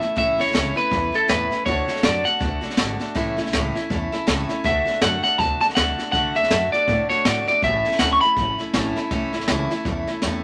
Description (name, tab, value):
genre	rockabilly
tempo	161 BPM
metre	4/4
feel	swing 59% on 8ths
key	A major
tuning	A4 = 440 Hz
part	electric guitar at the edge of break-up	melody	0.0-9.3 s	A4 to C#6	-22 LUFS	equal	none
part	picked steel-string acoustic guitar	accompaniment	0.0-10.4 s	A2 to F#4	-29 LUFS	equal	none
part	upright bass	bass	0.0-10.4 s	G#1 to A2	-32 LUFS	equal	none
part	jazz brush drum kit	drums	0.0-10.3 s	hi-hat, kick drum, snare drum	-27 LUFS	equal	none
room	light reverb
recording	none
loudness	-21 LUFS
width	mono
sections	0.0-10.4 A section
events	drum fill 10.2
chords	0.0 A; 1.7 D; 3.2 A; 4.6 D; 7.6 A